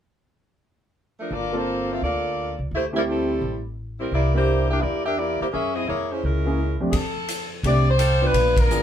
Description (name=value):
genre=jazz, big band swing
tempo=171 BPM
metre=4/4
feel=swing 64% on 8ths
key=F major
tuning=A4 = 441 Hz
part: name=clear saxophone section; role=melody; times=1.2-8.8 s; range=F3 to E5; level=-24 LUFS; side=equal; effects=none
part: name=upright bass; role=bass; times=1.3-8.8 s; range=G1 to Gb2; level=-25 LUFS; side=equal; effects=none
part: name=clear concert grand piano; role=accompaniment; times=1.5-8.8 s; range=F2 to B4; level=-26 LUFS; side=right 1 dB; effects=none
part: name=swinging big-band drum kit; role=drums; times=6.9-8.8 s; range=hi-hat, kick drum, ride cymbal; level=-25 LUFS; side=equal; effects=none
part: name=bright trumpet section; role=stabs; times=8.0-8.3 s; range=A4 to G5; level=-30 LUFS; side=right 1 dB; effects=none
room=wet small room reverb, RT60 0.5 s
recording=heard from further back in the room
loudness=-20 LUFS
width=side -9 dB against mid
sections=0.0-1.3 A section; 1.3-6.9 B section; 6.9-8.8 C section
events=band accent 8.5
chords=0.0 N.C.; 1.3 Gm11; 2.7 D9sus4; 4.1 C9; 5.5 Gb9; 6.9 F69